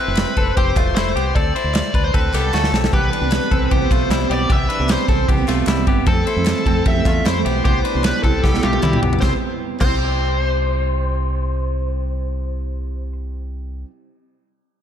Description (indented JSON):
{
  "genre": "jangly indie pop",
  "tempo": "152 BPM",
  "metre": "4/4",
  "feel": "straight",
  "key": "C major",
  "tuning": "A4 = 440 Hz",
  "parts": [
    { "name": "dark smooth lead guitar", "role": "melody", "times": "0.0-13.1 s", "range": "G4 to E5", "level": "-23 LUFS", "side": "left 2 dB", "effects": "overdrive, slapback echo" },
    { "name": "direct-recorded clean electric guitar", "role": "arpeggios", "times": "0.0-10.4 s", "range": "G3 to C5", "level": "-25 LUFS", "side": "left 4 dB", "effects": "slapback echo" },
    { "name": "deep dub fingered electric bass", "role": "bass", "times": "0.1-13.8 s", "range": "E1 to F2", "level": "-22 LUFS", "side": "equal", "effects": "none" },
    { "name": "modern studio drum kit", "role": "drums", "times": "0.2-9.9 s", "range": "crash cymbal, kick drum, ride cymbal, snare drum, toms", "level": "-19 LUFS", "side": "equal", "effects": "none" },
    { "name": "group handclap", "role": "percussion", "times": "0.2-9.9 s", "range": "none", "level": "-39 LUFS", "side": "right 4 dB", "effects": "none" },
    { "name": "picked steel-string acoustic guitar", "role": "accompaniment", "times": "2.9-13.9 s", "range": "C3 to A4", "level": "-25 LUFS", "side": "right 9 dB", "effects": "slapback echo" }
  ],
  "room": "light reverb, small room ambience",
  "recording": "none",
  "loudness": "-16 LUFS",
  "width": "side -9 dB against mid",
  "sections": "0.0-9.2 A section; 9.2-12.4 B section",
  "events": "drum fill 2.5-2.9, 8.4-9.2",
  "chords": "0.0 Fmaj7; 1.4 D7; 2.9 Cmaj7; 6.1 Fmaj7; 7.6 Cmaj7"
}